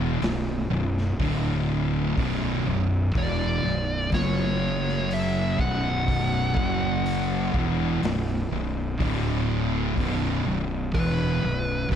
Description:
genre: stoner and doom metal.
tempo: 62 BPM.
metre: 4/4.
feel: straight.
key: B minor.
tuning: A4 = 439 Hz.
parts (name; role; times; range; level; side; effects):
thick fuzz guitar; riff; 0.0-12.0 s; B1 to F#3; -28 LUFS; left 8 dB; distortion.
thick fuzz guitar; riff; 0.0-12.0 s; B1 to F#3; -28 LUFS; right 8 dB; distortion.
fuzz fingered electric bass; bass; 0.0-12.0 s; B0 to F#1; -29 LUFS; equal; overdrive.
raw garage drum kit; drums; 0.2-12.0 s; hi-hat, kick drum, snare drum; -31 LUFS; equal; none.
fuzz lead guitar; melody; 3.2-12.0 s; B4 to F#5; -30 LUFS; equal; wah, distortion, digital delay.
room: small room ambience.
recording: dark, warm production.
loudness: -23 LUFS.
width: side -9 dB against mid.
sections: 0.0-12.0 A section.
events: none.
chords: 0.0 B5; 1.2 D5; 2.2 Bm; 4.1 F#5; 5.6 B5; 6.6 F#5; 7.5 B5; 9.0 D5; 10.0 B5.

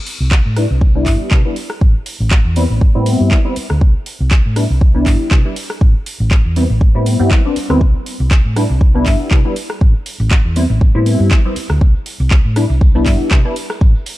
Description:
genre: filtered disco house.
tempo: 120 BPM.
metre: 4/4.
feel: swing 54% on 16ths.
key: C major.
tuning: A4 = 437 Hz.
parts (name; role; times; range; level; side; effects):
house drum kit; drums; 0.1-14.2 s; handclaps, hi-hat, rim click; -23 LUFS; equal; sidechain pumping on hats, studio reverb, sidechain pumping on cymbals.
tambourine; percussion; 0.1-14.2 s; none; -46 LUFS; right 8 dB; none.
hollow-body short-scale fingered electric bass; bass; 0.2-13.9 s; A1 to C3; -16 LUFS; equal; tube saturation, sidechain pumping, low-pass filter.
electronic kick drum; drums; 0.3-13.9 s; none; -11 LUFS; equal; studio reverb.
funky polysynth comp; accompaniment; 0.6-13.6 s; G3 to E4; -18 LUFS; left 1 dB; chorus, phaser, cassette tape, sidechain pumping, low-pass filter.
room: little or no reverb.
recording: dark, warm production.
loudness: -11 LUFS.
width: side -16 dB against mid.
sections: 0.0-14.2 A section.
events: filter sweep 0.0-14.2.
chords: 0.0 Cmaj9; 1.6 Am9; 3.8 Cmaj9; 5.6 Am9; 7.8 Cmaj9; 9.6 Am9; 11.8 Cmaj9; 13.6 N.C..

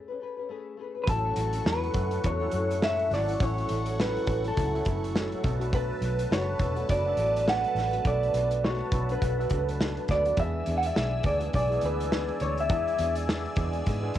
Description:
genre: indie pop, bedroom pop.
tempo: 103 BPM.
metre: 4/4.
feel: swing 60% on 16ths.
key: A major.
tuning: A4 = 440 Hz.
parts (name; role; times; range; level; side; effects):
nylon-string guitar; accompaniment; 0.0-14.2 s; A2 to B4; -37 LUFS; left 7 dB; lush chorus, warbly pitch drift, cassette tape.
electric guitar through a small old amp; melody; 1.0-13.1 s; A4 to F#5; -29 LUFS; equal; lush chorus, cassette tape, analog delay.
overdriven tine electric piano; accompaniment; 1.1-14.2 s; E3 to A4; -37 LUFS; right 8 dB; cassette tape.
phased analog pad; sustained chords; 1.3-14.2 s; A4 to E6; -37 LUFS; equal; phaser, chorus, cassette tape.
vintage muted fingered electric bass; bass; 1.1-14.2 s; E1 to G#2; -31 LUFS; equal; none.
loose indie drum kit; drums; 1.1-14.2 s; hi-hat, kick drum, snare drum; -30 LUFS; equal; cassette tape.
room: light reverb, small room ambience.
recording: home recording on cassette.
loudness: -25 LUFS.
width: side -12 dB against mid.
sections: 0.0-1.1 A section; 1.1-14.2 B section.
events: break 0.0-1.1.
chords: 0.0 Amaj9; 1.1 A6; 5.4 Bm7; 10.4 E7.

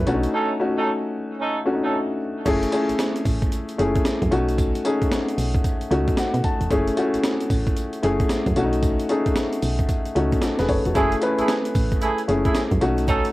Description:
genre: R&B, new jack swing.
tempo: 113 BPM.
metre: 4/4.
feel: swing 63% on 16ths.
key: F# dorian.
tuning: A4 = 440 Hz.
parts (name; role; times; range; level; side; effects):
dark grand piano; accompaniment; 0.0-13.3 s; A3 to A5; -22 LUFS; left 2 dB; cassette tape, plate reverb.
solid FM bass; bass; 0.0-13.2 s; E1 to B2; -24 LUFS; right 1 dB; none.
breakbeat sampler-style drum kit; drums; 0.1-13.3 s; crash cymbal, hi-hat, kick drum, snare drum, tambourine; -24 LUFS; right 1 dB; cassette tape.
tube shaker; percussion; 0.2-13.3 s; none; -50 LUFS; right 7 dB; none.
mellow horn section; stabs; 0.3-2.0, 11.0-13.3 s; A3 to A4; -24 LUFS; right 2 dB; cassette tape, plate reverb.
room: light reverb.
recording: home recording on cassette.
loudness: -19 LUFS.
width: side -18 dB against mid.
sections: 0.0-2.5 A section; 2.5-13.3 A section.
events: break 0.3-2.5; grand piano fill 5.9-6.7.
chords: 0.1 B9 (rootless); 2.5 F#m9; 4.3 B9; 6.7 F#m9; 8.6 B9; 11.0 F#m9; 12.8 B9.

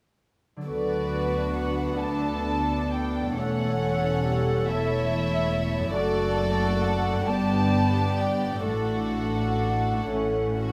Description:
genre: classical.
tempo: 45 BPM (dotted quarters).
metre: 6/8.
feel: uneven beats, rubato.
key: D major.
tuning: A4 = 439 Hz.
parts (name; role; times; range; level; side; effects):
concert harp; arpeggios; 0.6-10.7 s; E2 to A4; -35 LUFS; equal; none.
dark studio violin section; melody; 0.7-10.7 s; D5 to A5; -35 LUFS; equal; none.
warm symphonic violin section; second line; 0.7-10.7 s; C#4 to D5; -33 LUFS; equal; none.
warm studio viola section; accompaniment; 0.7-10.7 s; G3 to A4; -32 LUFS; equal; none.
warm studio cello section; bass; 0.7-10.7 s; D2 to A2; -33 LUFS; equal; none.
warm studio double bass section; bass; 0.7-10.7 s; E1 to D2; -33 LUFS; equal; none.
room: light reverb.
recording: close, detailed microphones.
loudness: -25 LUFS.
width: mono.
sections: 0.7-10.7 A section.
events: none.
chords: 0.7 D; 3.4 A7/E; 5.9 D/F#; 7.3 G; 8.7 D/A; 10.1 A.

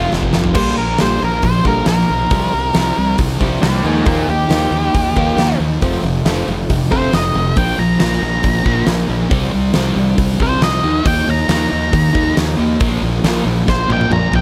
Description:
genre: quiet-loud alternative rock.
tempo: 137 BPM.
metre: 4/4.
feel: straight.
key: unclear.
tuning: A4 = 439 Hz.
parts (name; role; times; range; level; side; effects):
octave-fuzz lead guitar; melody; 0.0-14.4 s; Eb4 to Bb5; -22 LUFS; equal; distortion, analog delay.
picked steel-string acoustic guitar; arpeggios; 0.0-7.5 s; F2 to C4; -25 LUFS; equal; none.
thick fuzz guitar; riff; 0.0-14.4 s; F2 to Eb4; -21 LUFS; equal; distortion.
fuzz fingered electric bass; bass; 0.0-14.4 s; F1 to Eb2; -22 LUFS; equal; overdrive.
huge arena drum kit; drums; 0.1-14.4 s; crash cymbal, hi-hat, kick drum, snare drum, toms; -21 LUFS; equal; none.
room: little or no reverb.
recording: none.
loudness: -15 LUFS.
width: mono.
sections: 0.6-14.4 A section.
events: drum fill 0.1-0.6, 13.7-14.4; lead electric guitar solo 0.6-14.4.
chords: 0.0 F5; 0.6 Bb6; 2.3 Csus4; 3.9 Ebadd9; 5.8 F; 7.6 Bb5; 9.3 C5; 10.8 Eb5; 12.8 Bb5.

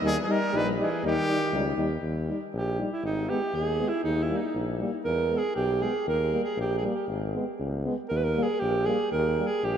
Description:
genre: balkan folk.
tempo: 118 BPM.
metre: 2/4.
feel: swing 55% on 16ths.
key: Eb phrygian dominant.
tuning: A4 = 443 Hz.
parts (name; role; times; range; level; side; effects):
warm alto saxophone; second line; 0.0-9.8 s; Eb3 to Cb5; -28 LUFS; right 2 dB; none.
mellow trombone; accompaniment; 0.0-9.5 s; G3 to Ab3; -35 LUFS; right 2 dB; none.
warm euphonium; accompaniment; 0.0-9.5 s; Bb3 to Eb4; -34 LUFS; left 5 dB; none.
clear tuba; bass; 0.0-9.8 s; Ab1 to E2; -30 LUFS; left 1 dB; none.
bright trumpet; melody; 0.1-1.8 s; G4 to Cb5; -32 LUFS; left 1 dB; none.
room: wet cathedral reverb, RT60 4.7 s.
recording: in a vast, echoing space.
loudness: -25 LUFS.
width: side -8 dB against mid.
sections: 0.0-2.0 A section; 2.0-9.8 B section.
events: alto saxophone solo 2.0-9.8.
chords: 0.0 Eb; 3.0 Abm; 4.0 Eb; 5.1 E; 6.1 Eb; 7.1 Abm; 8.1 Eb.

